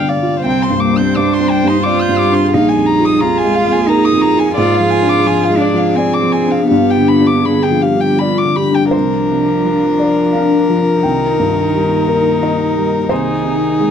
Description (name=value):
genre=neoclassical piano and strings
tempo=86 BPM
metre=3/4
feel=rubato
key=unclear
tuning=A4 = 440 Hz
part: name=warm violin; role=melody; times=0.0-13.9 s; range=Ab4 to G6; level=-18 LUFS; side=left 5 dB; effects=none
part: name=rich cello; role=second line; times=0.0-13.9 s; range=Eb3 to F4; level=-17 LUFS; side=right 4 dB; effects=none
part: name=felt-muted upright piano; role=accompaniment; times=0.0-13.9 s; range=Bb1 to G5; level=-17 LUFS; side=equal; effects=none
part: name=warm viola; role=accompaniment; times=0.0-13.9 s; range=D4 to F5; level=-20 LUFS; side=right 2 dB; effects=none
part: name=glassy FM pad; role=sustained chords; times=0.0-13.9 s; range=G3 to F5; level=-20 LUFS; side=left 5 dB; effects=ensemble chorus, built-in reverb
room=light reverb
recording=dark, warm production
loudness=-11 LUFS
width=side -8 dB against mid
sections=0.0-8.9 A section; 8.9-13.9 B section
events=none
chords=0.5 Csus2; 2.5 Bb7sus4; 4.6 Ddim/Ab; 6.7 G7; 8.9 Bbadd9/C; 11.0 Eb/C; 13.1 Ab/C